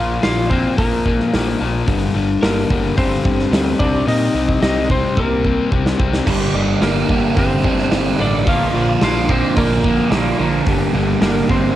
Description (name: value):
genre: quiet-loud alternative rock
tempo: 109 BPM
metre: 4/4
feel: straight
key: G minor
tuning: A4 = 440 Hz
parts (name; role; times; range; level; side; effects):
- lightly driven lead guitar; melody; 0.0-11.8 s; Bb3 to F5; -21 LUFS; equal; cassette tape, tape echo
- distorted electric guitar; riff; 0.0-11.8 s; G2 to C4; -20 LUFS; left 6 dB; distortion, cassette tape
- growling picked electric bass; bass; 0.0-11.7 s; G1 to Bb2; -22 LUFS; equal; overdrive
- big rock drum kit; drums; 0.2-11.6 s; crash cymbal, hi-hat, kick drum, snare drum; -20 LUFS; equal; none
- crunchy overdriven guitar; riff; 6.3-11.8 s; G2 to D4; -19 LUFS; right 7 dB; phaser, cassette tape
room: small room ambience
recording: home recording on cassette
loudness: -14 LUFS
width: side -13 dB against mid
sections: 0.0-11.8 A section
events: drum fill 5.2-6.3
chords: 0.0 Bb5; 1.9 Gm; 3.8 Cm; 6.3 Gm; 8.5 Bb; 10.7 Gm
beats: 0.24 0.79 1.34 | 1.88 2.43 2.98 3.53 | 4.08 4.62 5.17 5.72 | 6.27 6.82 7.37 7.92 | 8.47 9.02 9.57 10.12 | 10.67 11.22